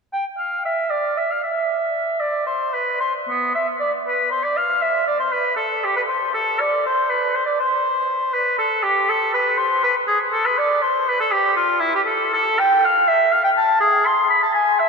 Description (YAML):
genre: classical, baroque-style fantasia for unaccompanied oboe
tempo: 79 BPM (dotted quarters)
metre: 12/8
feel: uneven beats, rubato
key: C major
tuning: A4 = 440 Hz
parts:
  - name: warm oboe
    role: solo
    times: 0.1-14.9 s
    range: B3 to C6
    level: -17 LUFS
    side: equal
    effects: none
room: wet cathedral reverb, RT60 5.2 s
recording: minimal, uncompressed stereo recording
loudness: -17 LUFS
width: side -4 dB against mid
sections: 0.1-14.9 A section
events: none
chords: none